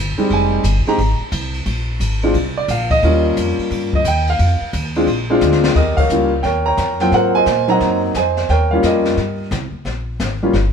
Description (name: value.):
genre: jazz piano trio.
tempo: 176 BPM.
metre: 4/4.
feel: swing 65% on 8ths.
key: Eb mixolydian.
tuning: A4 = 441 Hz.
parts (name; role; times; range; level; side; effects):
upright bass; bass; 0.0-10.7 s; F1 to Bb2; -19 LUFS; equal; none.
warm concert grand piano; melody; 0.2-10.5 s; Gb3 to Bb5; -16 LUFS; equal; none.
jazz brush drum kit; drums; 0.2-10.7 s; brushed snare drum, crash cymbal, hi-hat, kick drum, ride cymbal, snare drum; -24 LUFS; left 2 dB; none.
room: light reverb.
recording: band playing live in one room.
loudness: -14 LUFS.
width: side -6 dB against mid.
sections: 0.0-5.8 A section; 5.8-10.7 B section.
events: grand piano solo 0.0-5.8; drum fill 5.4-5.8; band accent 5.9.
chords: 0.3 Fm7; 1.7 Bb7sus2; 3.0 Eb9; 4.4 F7(no3); 5.1 Bb9; 5.8 Eb9; 7.1 Ab9; 8.5 Eb9; 9.9 Bb7(no3).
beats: | 0.30 0.64 0.98 1.32 | 1.66 2.00 2.35 2.69 | 3.03 3.37 3.71 4.05 | 4.39 4.73 5.07 5.41 | 5.75 6.10 6.44 6.78 | 7.12 7.46 7.80 8.14 | 8.49 8.83 9.17 9.51 | 9.85 10.19 10.54.